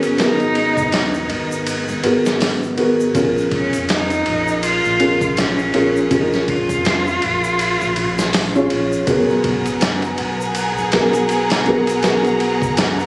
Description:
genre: trip hop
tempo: 81 BPM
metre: 4/4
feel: swing 58% on 16ths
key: G# minor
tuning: A4 = 440 Hz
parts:
  - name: clear cello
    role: melody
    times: 0.0-8.7 s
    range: C#4 to E#4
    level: -20 LUFS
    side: equal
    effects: dub echo
  - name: felt-muted upright piano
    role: accompaniment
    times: 0.0-13.1 s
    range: B3 to C#5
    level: -18 LUFS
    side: equal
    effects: harmonic tremolo, tape echo
  - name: round analog bass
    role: bass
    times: 0.0-13.1 s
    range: F#1 to E#2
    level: -28 LUFS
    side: equal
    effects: none
  - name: boom bap sampler-style drum kit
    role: drums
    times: 0.0-13.0 s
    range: hi-hat, kick drum, ride cymbal, snare drum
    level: -21 LUFS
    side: equal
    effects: none
  - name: egg shaker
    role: percussion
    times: 0.0-13.1 s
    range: none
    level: -37 LUFS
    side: equal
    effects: none
  - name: rich studio violin section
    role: sustained chords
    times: 9.1-13.1 s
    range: B3 to A#5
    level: -22 LUFS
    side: equal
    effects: none
room: light reverb, small room ambience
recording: recorded on a phone in the room, club reverb, vinyl crackle, compression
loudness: -15 LUFS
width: side -24 dB against mid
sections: 0.0-13.1 A section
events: none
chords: 0.0 G#m9; 3.1 A#m7; 9.1 G#m9

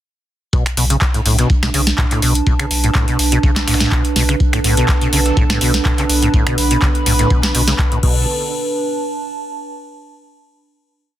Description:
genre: acid house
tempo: 124 BPM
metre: 4/4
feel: swing 53% on 16ths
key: B minor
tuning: A4 = 439 Hz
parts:
  - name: deep acid bass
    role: riff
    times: 0.5-8.3 s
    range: A2 to C#3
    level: -19 LUFS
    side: equal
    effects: tube saturation, ensemble chorus, sidechain pumping
  - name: dusty soul sampler-style drum kit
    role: drums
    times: 0.5-7.9 s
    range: hi-hat, snare drum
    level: -28 LUFS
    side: equal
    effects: sidechain pumping on hats, high-pass filter on hats, high-pass filter on snare, high-pass filter on room
  - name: electronic kick drum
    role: drums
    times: 0.5-8.1 s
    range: none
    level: -17 LUFS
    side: equal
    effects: none
  - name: warbly tape-like pad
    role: texture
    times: 1.2-10.2 s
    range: D4 to B5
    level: -22 LUFS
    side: right 5 dB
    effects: chorus, built-in reverb, sidechain pumping
  - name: booming analog drum machine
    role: drums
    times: 0.7-8.1 s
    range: crash cymbal, finger snaps, handclaps, hi-hat, snare drum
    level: -19 LUFS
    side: equal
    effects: soft clipping on snare
  - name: round analog bass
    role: bass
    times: 0.8-8.3 s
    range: B1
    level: -18 LUFS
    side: equal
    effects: sidechain pumping
  - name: lush unison pad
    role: sustained chords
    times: 4.4-8.3 s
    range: D3 to B4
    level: -23 LUFS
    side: right 1 dB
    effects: chorus, sidechain pumping
room: light reverb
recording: dense, heavily limited modern master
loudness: -13 LUFS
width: side -12 dB against mid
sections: 0.5-8.3 drop; 8.3-10.2 final note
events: drop 0.5-8.3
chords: 0.5 Bm7

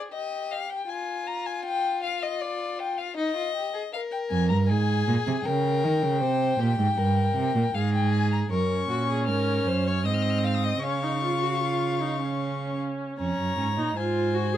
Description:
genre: classical, baroque-style fugue for string quartet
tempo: 78 BPM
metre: 3/4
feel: straight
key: F minor, Db major from 8.5 s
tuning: A4 = 441 Hz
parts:
  - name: rich violin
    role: second line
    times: 0.0-14.6 s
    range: Eb4 to F5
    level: -31 LUFS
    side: left 4 dB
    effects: none
  - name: warm violin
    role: melody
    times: 0.1-14.6 s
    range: D5 to F6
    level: -30 LUFS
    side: left 5 dB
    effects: none
  - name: warm cello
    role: bass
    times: 4.3-14.6 s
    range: F2 to Eb3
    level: -26 LUFS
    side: right 3 dB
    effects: none
  - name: rich viola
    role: accompaniment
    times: 8.5-14.6 s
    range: C4 to Ab4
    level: -29 LUFS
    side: right 2 dB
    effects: none
room: light reverb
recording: dark, warm production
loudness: -24 LUFS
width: side -11 dB against mid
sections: 0.0-8.5 A section; 8.5-13.2 B section; 13.2-14.6 C section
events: none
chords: 0.0 Cm (rootless); 0.9 Fm; 1.6 G5/F; 3.2 Ebadd9; 3.9 Fm; 5.4 Bbm/Db; 6.2 C5; 7.7 Fm/Ab; 8.5 Gbadd9; 9.3 Db/Ab; 10.1 Ab; 10.8 Db; 13.2 Db/F

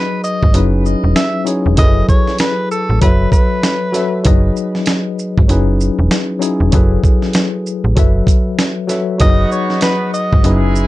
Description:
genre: hip hop, boom-bap hip-hop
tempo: 97 BPM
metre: 4/4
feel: swing 60% on 16ths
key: unclear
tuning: A4 = 440 Hz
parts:
  - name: breathy tenor saxophone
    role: melody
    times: 0.0-4.2, 9.2-10.6 s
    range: A4 to E5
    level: -20 LUFS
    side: equal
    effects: high-pass filter, low-pass filter, digital delay
  - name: mellow tine electric piano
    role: accompaniment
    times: 0.0-10.9 s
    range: F#3 to E5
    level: -18 LUFS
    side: left 3 dB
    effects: medium stereo tremolo, cassette tape, high-pass filter, low-pass filter
  - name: dusty soul sampler-style drum kit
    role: drums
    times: 0.2-10.9 s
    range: hi-hat, kick drum, shaker, snare drum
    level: -14 LUFS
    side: right 1 dB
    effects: none
  - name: slap-like FM bass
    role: bass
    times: 0.4-10.9 s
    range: E1 to A1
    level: -14 LUFS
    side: equal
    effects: none
  - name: clear trumpet section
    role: stabs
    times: 9.2-10.9 s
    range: G#3 to G#4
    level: -24 LUFS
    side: right 2 dB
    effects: high-pass filter, low-pass filter, digital delay
room: light reverb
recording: dark, warm production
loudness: -12 LUFS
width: side -17 dB against mid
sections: 0.0-10.9 A section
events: none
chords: 0.0 G#m7/F#; 0.5 C#m9; 1.8 F#m11; 3.0 B9sus4/F#; 4.3 G#m7/F#; 5.5 C#m9; 6.7 F#m11; 8.0 B9sus4/F#; 9.2 G#m7/F#

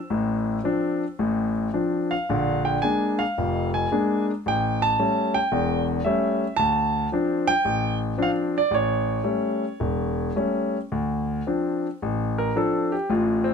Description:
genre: solo jazz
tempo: 111 BPM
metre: 4/4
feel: swing 67% on 8ths, rubato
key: D minor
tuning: A4 = 440 Hz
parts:
  - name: warm concert grand piano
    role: solo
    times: 0.0-13.5 s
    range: E1 to E6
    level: -22 LUFS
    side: left 1 dB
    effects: none
room: light reverb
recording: none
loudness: -22 LUFS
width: side -6 dB against mid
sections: 0.0-10.9 A section; 10.9-13.5 B section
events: grand piano solo 10.9-13.5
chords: 0.0 Dm7; 2.3 Bb7; 4.5 A7; 6.6 Dm7; 8.7 A7; 10.9 Dm7

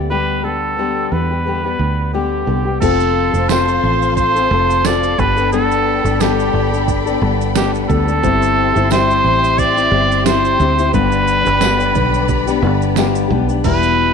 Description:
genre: acoustic pop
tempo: 89 BPM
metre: 4/4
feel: swing 55% on 16ths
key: unclear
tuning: A4 = 440 Hz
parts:
  - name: fingerpicked steel-string acoustic guitar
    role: accompaniment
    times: 0.0-14.1 s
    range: E2 to A4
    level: -18 LUFS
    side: left 9 dB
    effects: none
  - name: fingered electric bass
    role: bass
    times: 0.0-14.1 s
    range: E1 to E2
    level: -19 LUFS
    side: right 2 dB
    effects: none
  - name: clear trumpet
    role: melody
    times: 0.1-14.1 s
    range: G4 to D5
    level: -17 LUFS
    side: right 2 dB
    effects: none
  - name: warm symphonic string section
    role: sustained chords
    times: 2.8-13.6 s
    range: G4 to C6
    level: -25 LUFS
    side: right 1 dB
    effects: none
  - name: dusty soul sampler-style drum kit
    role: drums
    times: 2.8-14.0 s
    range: crash cymbal, kick drum, shaker, snare drum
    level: -22 LUFS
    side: right 9 dB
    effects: overdrive
  - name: tambourine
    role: percussion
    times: 3.5-13.1 s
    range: none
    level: -31 LUFS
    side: right 16 dB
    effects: none
room: moderate echo chamber reverb, RT60 1.6 s, small room ambience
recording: 1960s-style stereo with parts hard left and right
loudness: -13 LUFS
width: side -6 dB against mid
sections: 0.0-2.8 A section; 2.8-13.6 B section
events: none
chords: 0.0 G/D; 2.8 F; 5.2 Gadd9; 8.2 C/G; 10.9 G

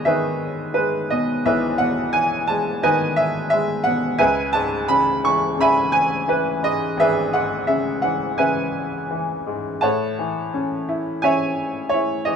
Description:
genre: classical, lyrical solo piano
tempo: 86 BPM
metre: 4/4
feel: rubato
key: unclear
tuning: A4 = 438 Hz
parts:
  - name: bright upright piano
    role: solo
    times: 0.0-12.4 s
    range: G#1 to C#6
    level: -18 LUFS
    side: equal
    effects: none
room: light reverb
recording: dark, warm production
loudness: -18 LUFS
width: side -7 dB against mid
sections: 0.0-12.4 A section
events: none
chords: 0.0 Emaj7; 4.2 C#m7; 9.8 A6

